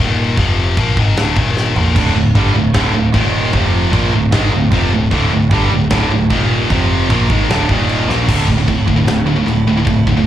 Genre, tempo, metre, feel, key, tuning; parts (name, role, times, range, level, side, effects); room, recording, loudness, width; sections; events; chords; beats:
heavy metal; 151 BPM; 4/4; straight; D phrygian; A4 = 440 Hz
heavy high-gain guitar; riff; 0.0-10.3 s; D2 to Bb3; -17 LUFS; left 5 dB; distortion
growling picked electric bass; bass; 0.0-10.3 s; D1 to Bb1; -17 LUFS; equal; overdrive
big rock drum kit; drums; 0.4-10.2 s; china cymbal, crash cymbal, kick drum, snare drum, toms; -17 LUFS; equal
heavy high-gain guitar; riff; 1.9-10.3 s; D2 to Bb3; -18 LUFS; right 8 dB; distortion, slapback echo
little or no reverb; live gig heard through the venue's PA, club reverb; -12 LUFS; side -11 dB against mid
0.0-8.3 A section; 8.3-10.3 B section
drum fill 1.6-2.0, 8.1
0.4 F5; 0.8 Dm; 1.4 Eb5; 1.8 Dm; 3.1 Eb5; 3.5 F5; 3.9 Dm; 6.3 Eb5; 6.7 F5; 7.1 Dm; 7.7 Eb5; 8.1 Bb5; 8.3 D5
| 0.37 0.76 1.16 1.56 | 1.95 2.35 2.74 3.14 | 3.54 3.93 4.33 4.72 | 5.12 5.52 5.91 6.31 | 6.70 7.10 7.50 7.89 | 8.29 8.69 9.08 9.48 | 9.88